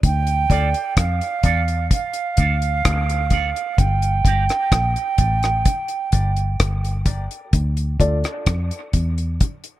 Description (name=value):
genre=dub reggae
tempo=64 BPM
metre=4/4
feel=straight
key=D minor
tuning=A4 = 440 Hz
part: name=vintage muted fingered electric bass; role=bass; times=0.0-9.4 s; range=G1 to F2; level=-20 LUFS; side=equal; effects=none
part: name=deep reggae drum kit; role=drums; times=0.0-9.8 s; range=hi-hat, kick drum, rim click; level=-19 LUFS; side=equal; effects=none
part: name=mellow concert flute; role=melody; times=0.1-7.1 s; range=F5 to G5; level=-23 LUFS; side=right 5 dB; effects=dub echo
part: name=electric guitar with an envelope filter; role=accompaniment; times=0.5-4.4 s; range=F4 to D5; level=-28 LUFS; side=right 8 dB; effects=lush chorus, high-pass filter, dub echo
part: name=dark upright piano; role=stabs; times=0.5-8.2 s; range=D4 to D5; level=-28 LUFS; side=left 2 dB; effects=high-pass filter, dub echo
room=light reverb, small room ambience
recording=none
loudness=-17 LUFS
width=side -15 dB against mid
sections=0.0-9.8 A section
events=filter sweep 0.0-7.5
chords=0.0 Dm; 3.8 Gm; 7.5 Dm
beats=| 0.03 0.97 1.91 2.84 | 3.78 4.72 5.66 6.59 | 7.53 8.47 9.41